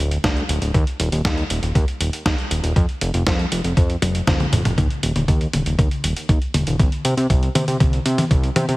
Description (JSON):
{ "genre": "italo disco", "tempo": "119 BPM", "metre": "4/4", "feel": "straight", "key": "unclear", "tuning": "A4 = 440 Hz", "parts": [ { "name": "fat analog bass", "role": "bass", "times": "0.0-8.8 s", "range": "D1 to C3", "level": "-21 LUFS", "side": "equal", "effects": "digital delay" }, { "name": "dusty soul sampler-style drum kit", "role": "drums", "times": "0.1-8.8 s", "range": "hi-hat, snare drum, toms", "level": "-23 LUFS", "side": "equal", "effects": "none" }, { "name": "electronic kick drum", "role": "drums", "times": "0.2-8.4 s", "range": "none", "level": "-18 LUFS", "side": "equal", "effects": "none" } ], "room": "light reverb, digital ambience", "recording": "heavily compressed radio sound, multiband compression", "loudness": "-17 LUFS", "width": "side -20 dB against mid", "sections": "0.0-4.8 A section; 4.8-8.8 B section", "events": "drum fill 4.0-4.8, 4.8-8.8", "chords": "none", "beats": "0.24 | 0.74 1.25 1.75 2.26 | 2.76 3.27 3.77 4.28 | 4.78 5.28 5.79 6.29 | 6.80 7.30 7.80 8.31" }